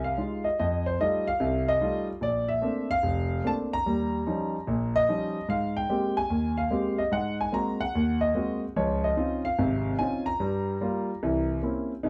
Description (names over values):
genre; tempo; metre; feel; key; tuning
solo jazz; 147 BPM; 4/4; swing 66% on 8ths; F minor; A4 = 440 Hz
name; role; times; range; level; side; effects
warm concert grand piano; solo; 0.0-12.1 s; F1 to Bb5; -28 LUFS; equal; none
room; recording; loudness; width
wet small room reverb, RT60 0.5 s; heard from further back in the room; -27 LUFS; mono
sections
0.0-12.0 A section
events
none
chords
0.0 Fm7; 0.6 F9; 2.2 Bbmaj9; 3.9 Eb9; 5.5 Abmaj9; 7.1 Ab9; 8.8 Dbmaj9; 10.4 Gm7; 11.2 C7b9